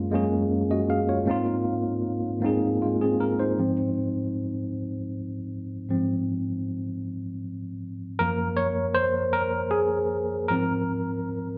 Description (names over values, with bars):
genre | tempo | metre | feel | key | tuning
R&B | 52 BPM (dotted quarters) | 6/8 | straight | Ab mixolydian | A4 = 441 Hz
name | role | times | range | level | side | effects
tine electric piano | solo | 0.0-11.6 s | Gb2 to F5 | -27 LUFS | equal | overdrive
room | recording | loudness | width
moderate studio reverb, RT60 0.6 s | none | -27 LUFS | mono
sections
0.0-3.6 A section; 3.6-8.2 B section; 8.2-11.6 C section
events
tine electric piano solo 3.6-8.2, 8.2-11.6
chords
0.0 Gbmaj9; 1.3 Ab69; 3.6 Ab6; 8.2 Gbmaj9; 10.5 Ab69